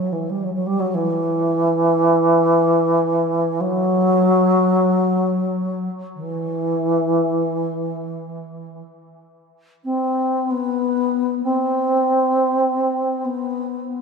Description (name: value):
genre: world meditative, free-time meditation music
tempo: free time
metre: none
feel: none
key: E hirajoshi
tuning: A4 = 440 Hz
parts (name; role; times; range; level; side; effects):
- mellow bass flute; solo; 0.0-14.0 s; E3 to C4; -17 LUFS; equal; diffuse ambient delay
room: wet recital hall reverb, RT60 1.6 s, small room ambience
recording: none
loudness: -17 LUFS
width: side -5 dB against mid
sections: 0.0-14.0 A section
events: none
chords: none